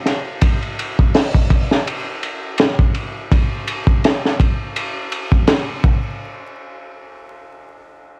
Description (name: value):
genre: trip hop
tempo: 83 BPM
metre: 4/4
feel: swing 56% on 16ths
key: none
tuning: none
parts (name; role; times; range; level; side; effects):
- crunchy breakbeat drum kit; drums; 0.1-6.0 s; hi-hat, kick drum, ride cymbal, snare drum; -19 LUFS; equal; cassette tape
room: little or no reverb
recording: home recording on cassette, vinyl crackle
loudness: -18 LUFS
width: mono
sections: 0.0-6.2 A section; 6.2-8.2 B section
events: none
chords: none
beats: | 0.42 1.14 1.87 2.59 | 3.31 4.04 4.76 5.48